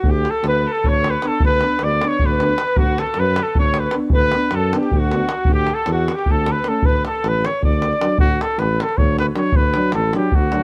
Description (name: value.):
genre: balkan folk, Balkan brass band.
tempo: 310 BPM (eighths).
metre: 7/8.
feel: straight.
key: D major.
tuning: A4 = 444 Hz.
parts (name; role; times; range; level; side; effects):
mellow trumpet; melody; 0.0-10.6 s; F#4 to D5; -23 LUFS; equal; none.
clear alto saxophone; second line; 0.0-8.1 s; F#4 to D5; -28 LUFS; equal; none.
warm tuba; bass; 0.0-10.6 s; A1 to F#2; -24 LUFS; equal; none.
davul; percussion; 0.0-10.6 s; none; -22 LUFS; equal; none.
dark French horn; accompaniment; 1.2-10.6 s; C#4 to D4; -28 LUFS; equal; none.
dark euphonium; accompaniment; 1.2-10.6 s; F#3 to B3; -30 LUFS; equal; none.
room: light reverb.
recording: none.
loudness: -18 LUFS.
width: mono.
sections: 0.0-8.2 A section; 8.2-10.6 A section.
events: none.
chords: 0.1 Bm9/D; 2.8 Bm/D; 5.5 A5/D; 6.8 D5; 8.2 D.